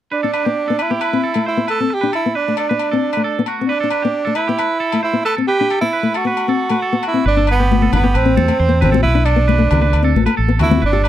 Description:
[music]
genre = highlife guitar band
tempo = 134 BPM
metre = 4/4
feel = straight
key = G major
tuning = A4 = 441 Hz
[part]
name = breathy tenor saxophone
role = melody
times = 0.1-11.1 s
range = B3 to A4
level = -18 LUFS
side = right 4 dB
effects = none
[part]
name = twangy electric guitar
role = arpeggios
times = 0.1-11.1 s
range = F#4 to C5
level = -23 LUFS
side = right 7 dB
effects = tape echo
[part]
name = nylon-string guitar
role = accompaniment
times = 0.2-11.1 s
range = A3 to G4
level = -20 LUFS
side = left 5 dB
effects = none
[part]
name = agogo bells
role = percussion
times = 0.3-11.1 s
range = none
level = -28 LUFS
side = left 22 dB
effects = none
[part]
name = deep dub fingered electric bass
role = bass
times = 7.3-11.1 s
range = G1 to E2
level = -15 LUFS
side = equal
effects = none
[part]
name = congas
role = percussion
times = 7.7-10.8 s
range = none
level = -19 LUFS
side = left 6 dB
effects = none
[sound]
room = little or no reverb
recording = dry, close 1970s-style studio recording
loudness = -14 LUFS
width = side -12 dB against mid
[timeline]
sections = 0.1-7.3 A section; 7.3-11.1 B section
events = none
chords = 0.1 G; 1.0 Amadd9; 1.9 A9sus4; 2.8 D; 3.7 G; 4.6 Amadd9; 5.5 A13sus4; 6.4 Am69; 7.3 G; 8.2 Amadd9; 9.1 Bm11; 9.9 D

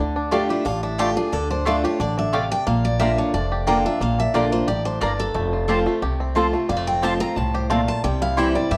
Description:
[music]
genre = bluegrass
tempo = 179 BPM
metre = 4/4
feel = swing 53% on 8ths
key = D minor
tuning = A4 = 440 Hz
[part]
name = bluegrass banjo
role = melody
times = 0.0-8.8 s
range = G3 to G4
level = -31 LUFS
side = equal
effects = none
[part]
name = picked old ladder-braced acoustic guitar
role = accompaniment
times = 0.0-8.8 s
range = F2 to F4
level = -26 LUFS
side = equal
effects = none
[part]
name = upright bass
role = bass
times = 0.0-8.8 s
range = F1 to G2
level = -28 LUFS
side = equal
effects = none
[part]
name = picked steel-string acoustic guitar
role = melody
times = 0.3-8.8 s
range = E4 to Bb5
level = -28 LUFS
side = equal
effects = none
[part]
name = mandolin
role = stabs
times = 0.3-8.5 s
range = A3 to Bb5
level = -28 LUFS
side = equal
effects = none
[sound]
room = moderate studio reverb, RT60 0.9 s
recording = none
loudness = -21 LUFS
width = mono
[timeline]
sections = 0.0-8.8 A section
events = none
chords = 0.0 Dm; 2.7 Bb; 5.4 F; 8.0 C

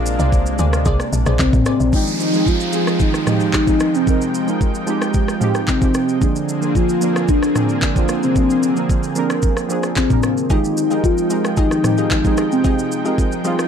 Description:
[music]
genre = amapiano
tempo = 112 BPM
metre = 4/4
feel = straight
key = F dorian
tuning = A4 = 440 Hz
[part]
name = soft octave-layered synth lead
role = melody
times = 0.0-13.0 s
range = C4 to F5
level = -19 LUFS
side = left 2 dB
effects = chorus, phaser, digital delay
[part]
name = lush unison pad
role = sustained chords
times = 0.0-13.7 s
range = C3 to G5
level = -25 LUFS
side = right 1 dB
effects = chorus
[part]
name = woody log drum bass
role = bass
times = 0.0-1.9 s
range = Bb1 to D2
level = -18 LUFS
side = equal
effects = none
[part]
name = smooth R&B drum kit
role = drums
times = 0.1-13.7 s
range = handclaps, kick drum, rim click, shaker, toms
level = -19 LUFS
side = equal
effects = none
[part]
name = glassy wavetable pluck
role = stabs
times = 0.2-1.9, 10.5-13.7 s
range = F4 to Eb5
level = -27 LUFS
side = left 3 dB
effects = chorus, digital delay
[part]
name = warm analog keys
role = accompaniment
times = 1.9-13.7 s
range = F3 to Bb4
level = -22 LUFS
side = right 4 dB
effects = chorus
[part]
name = downlifter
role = sound effects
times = 1.9-6.2 s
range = none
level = -28 LUFS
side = right 1 dB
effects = none
[sound]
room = little or no reverb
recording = dark, warm production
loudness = -15 LUFS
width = side -8 dB against mid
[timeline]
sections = 0.0-1.9 A section; 1.9-13.7 B section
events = drop 0.0-1.9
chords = 0.0 Bb9; 1.9 Fm9; 6.2 Bb9; 10.5 Fm9

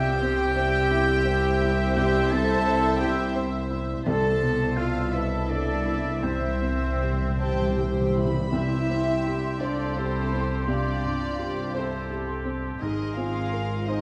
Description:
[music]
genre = cinematic, emotional film score for orchestra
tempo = 56 BPM (dotted quarters)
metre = 6/8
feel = rubato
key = C major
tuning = A4 = 440 Hz
[part]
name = warm symphonic violin section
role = melody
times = 0.0-14.0 s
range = A4 to B5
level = -38 LUFS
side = equal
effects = none
[part]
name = clear oboe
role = second line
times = 0.0-14.0 s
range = G4 to A5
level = -35 LUFS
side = equal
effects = none
[part]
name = warm symphonic violin section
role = second line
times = 0.0-14.0 s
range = E4 to A5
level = -36 LUFS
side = equal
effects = none
[part]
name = dark chamber viola section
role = accompaniment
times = 0.0-14.0 s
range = E4 to E5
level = -38 LUFS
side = equal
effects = none
[part]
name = felt-muted upright piano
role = accompaniment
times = 0.0-14.0 s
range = C2 to C5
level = -34 LUFS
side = equal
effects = none
[part]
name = warm French horn section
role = sustained chords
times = 0.0-14.0 s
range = B2 to G4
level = -35 LUFS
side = equal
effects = none
[part]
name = warm symphonic cello section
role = bass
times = 0.0-14.0 s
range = Ab2 to A4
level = -32 LUFS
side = equal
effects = none
[part]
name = warm symphonic double bass section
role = bass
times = 0.0-14.0 s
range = Ab1 to C2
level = -31 LUFS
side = equal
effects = none
[part]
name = timpani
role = percussion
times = 4.1-9.6 s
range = C3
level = -32 LUFS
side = equal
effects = none
[part]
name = mellow flute section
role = second line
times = 8.5-14.0 s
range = C6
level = -41 LUFS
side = equal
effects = none
[sound]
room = moderate scoring stage reverb, RT60 1.5 s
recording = dark, warm production, vinyl crackle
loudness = -25 LUFS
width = mono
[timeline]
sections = 0.0-8.5 A section; 8.5-14.0 B section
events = timpani fill 6.2-8.5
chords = 0.0 C; 4.1 Amadd9/C; 6.2 C; 12.8 Abadd9

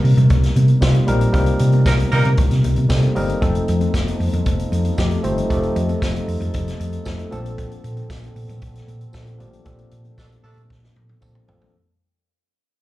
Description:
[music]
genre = disco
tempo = 115 BPM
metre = 4/4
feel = straight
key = Bb major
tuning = A4 = 440 Hz
[part]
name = tine electric piano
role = accompaniment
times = 0.0-11.8 s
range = F3 to Eb5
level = -24 LUFS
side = left 2 dB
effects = medium stereo tremolo, slapback echo
[part]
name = hollow-body short-scale fingered electric bass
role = bass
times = 0.0-11.6 s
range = F1 to C3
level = -18 LUFS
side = equal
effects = none
[part]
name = vintage drum kit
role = drums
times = 0.0-11.7 s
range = hi-hat, kick drum, snare drum, toms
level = -23 LUFS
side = equal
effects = none
[part]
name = congas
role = percussion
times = 0.2-11.6 s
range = none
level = -32 LUFS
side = left 4 dB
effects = none
[part]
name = tambourine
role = percussion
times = 0.8-11.3 s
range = none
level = -39 LUFS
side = right 4 dB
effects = none
[part]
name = warm horn section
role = stabs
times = 1.9-2.3, 10.2-10.6 s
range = F3 to Bb4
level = -23 LUFS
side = right 2 dB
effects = plate reverb, slapback echo
[part]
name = mellow French horn section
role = sustained chords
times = 3.4-11.7 s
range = D3 to A4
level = -32 LUFS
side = right 4 dB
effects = none
[sound]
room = little or no reverb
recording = live gig heard through the venue's PA, club reverb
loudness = -16 LUFS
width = side -16 dB against mid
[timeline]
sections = 0.0-11.7 A section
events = fade-out 0.0-11.7; band accent 1.3-3.4, 9.7-11.7; tine electric piano fill 2.6-3.4; drum fill 10.7-11.7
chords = 0.0 Cm7; 3.4 F7; 7.3 Bbmaj9

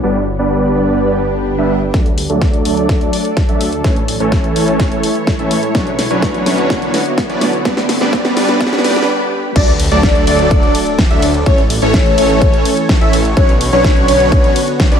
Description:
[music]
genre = EDM, festival progressive house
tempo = 126 BPM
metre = 4/4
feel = straight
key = D major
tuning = A4 = 438 Hz
[part]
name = lush unison pad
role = sustained chords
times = 0.0-15.0 s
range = D3 to D5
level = -19 LUFS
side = equal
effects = chorus, sidechain pumping
[part]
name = supersaw chords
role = riff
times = 0.0-15.0 s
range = E3 to E5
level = -16 LUFS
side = equal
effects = cassette tape, sidechain pumping, low-pass filter, ping-pong delay
[part]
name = detuned saw bass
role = bass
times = 0.0-15.0 s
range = G1 to A2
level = -21 LUFS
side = equal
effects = sidechain pumping
[part]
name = swell, riser and sub drop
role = sound effects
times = 1.1-11.5 s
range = none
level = -24 LUFS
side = right 2 dB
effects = none
[part]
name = big-room dance drum kit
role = drums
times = 1.9-15.0 s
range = crash cymbal, hi-hat, ride cymbal, snare drum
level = -19 LUFS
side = equal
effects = none
[part]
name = electronic kick drum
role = drums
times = 1.9-14.9 s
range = none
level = -14 LUFS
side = equal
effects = none
[part]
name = wide unison lead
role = arpeggios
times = 9.6-15.0 s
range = C#5 to E5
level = -16 LUFS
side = left 2 dB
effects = lush chorus, cassette tape, sidechain pumping, ping-pong delay
[sound]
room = light reverb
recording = high-pass filter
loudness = -11 LUFS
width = side -8 dB against mid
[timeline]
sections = 0.0-1.9 A section; 1.9-9.6 B section; 9.6-15.0 C section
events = swell 1.1-1.9; build-up 1.9-9.6; drum fill 1.9-9.1; filter sweep on supersaw synth 1.9-9.6; filter sweep 1.9-9.6; break 9.1-9.6; drop 9.6-15.0; impact 9.6-11.5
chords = 0.0 G; 1.9 D; 3.8 A; 5.7 Bmadd9; 7.7 G; 9.6 D; 11.5 A; 13.4 Bmadd9

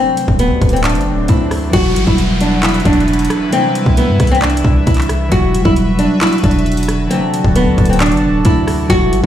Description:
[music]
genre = hip hop, trap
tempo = 134 BPM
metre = 4/4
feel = half-time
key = E minor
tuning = A4 = 440 Hz
[part]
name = nylon-string guitar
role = melody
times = 0.0-9.3 s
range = B3 to F#4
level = -16 LUFS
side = equal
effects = ping-pong delay
[part]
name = sweeping resonant pad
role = sustained chords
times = 0.0-9.3 s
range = C3 to A5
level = -24 LUFS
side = left 1 dB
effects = chorus
[part]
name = swell and downlifter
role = sound effects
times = 0.0-5.3 s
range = none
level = -26 LUFS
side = left 1 dB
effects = none
[part]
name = trap drum kit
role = drums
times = 0.2-9.3 s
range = handclaps, hi-hat, kick drum, rim click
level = -17 LUFS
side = equal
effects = none
[part]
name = hard-hitting 808-style bass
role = bass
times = 0.3-9.3 s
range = D1 to G2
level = -17 LUFS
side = equal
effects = none
[part]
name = concert harp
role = accompaniment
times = 1.7-9.3 s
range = C3 to B4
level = -17 LUFS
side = equal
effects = none
[sound]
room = digital ambience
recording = played on a big sound system in a bare room, stone room reverb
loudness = -11 LUFS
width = side -11 dB against mid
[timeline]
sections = 0.0-1.7 A section; 1.7-9.3 B section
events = swell 0.0-1.7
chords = 0.0 D7; 1.7 Emadd9; 3.5 Cmaj7; 5.3 Emadd9; 7.1 D7

